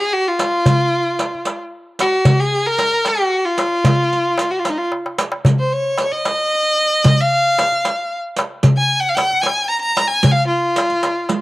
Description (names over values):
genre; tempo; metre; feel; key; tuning
Arabic maqam ensemble; 75 BPM (dotted quarters); 6/8; straight; F maqam bayati; A4 = 437 Hz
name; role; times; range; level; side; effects
clear violin; melody; 0.0-11.4 s; Eb4 to Bb5; -16 LUFS; equal; cassette tape
darbuka; percussion; 0.4-11.4 s; none; -17 LUFS; equal; none
riq; percussion; 0.4-11.4 s; none; -24 LUFS; right 4 dB; none
room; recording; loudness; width
light reverb, small room ambience; home recording on cassette; -14 LUFS; side -19 dB against mid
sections
0.0-11.4 A section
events
drum fill 4.9-5.4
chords
none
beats
| 0.66 1.46 | 2.25 3.05 | 3.85 4.65 | 5.44 6.24 | 7.04 7.83 | 8.63 9.43 | 10.22 11.02